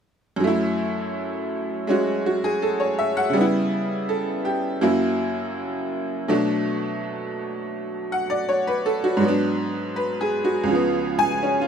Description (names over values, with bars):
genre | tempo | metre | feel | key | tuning
solo jazz | 82 BPM | 4/4 | swing 67% on 8ths | F# minor | A4 = 440 Hz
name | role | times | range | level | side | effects
tack piano | solo | 0.4-11.7 s | C#2 to G#5 | -21 LUFS | equal | none
room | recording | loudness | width
light reverb | close, detailed microphones | -21 LUFS | side -7 dB against mid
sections
0.4-11.7 A section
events
none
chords
0.4 F#m7; 3.4 C#m7b5; 4.8 F#7; 6.3 Bm7; 9.2 G#m7b5; 10.7 C#7